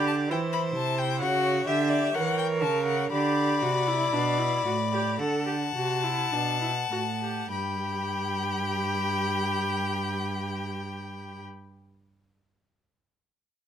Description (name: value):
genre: classical, baroque-style fugue for string quartet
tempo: 49-67 BPM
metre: 4/4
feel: straight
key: G major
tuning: A4 = 440 Hz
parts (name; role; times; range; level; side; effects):
- rich violin; melody; 0.0-11.4 s; E5 to B5; -30 LUFS; left 9 dB; none
- clear violin; second line; 0.0-11.4 s; C5 to G5; -32 LUFS; left 3 dB; none
- clear viola; accompaniment; 0.0-11.4 s; D4 to A#4; -31 LUFS; right 3 dB; none
- rich cello; bass; 0.0-11.4 s; G2 to E3; -30 LUFS; right 4 dB; none
room: little or no reverb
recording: close, detailed microphones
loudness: -25 LUFS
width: side -9 dB against mid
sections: 0.0-7.5 A section; 7.5-12.4 B section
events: slowing down 0.0-7.5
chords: 0.0 C; 1.2 C#dim7; 3.1 D7sus4; 7.5 G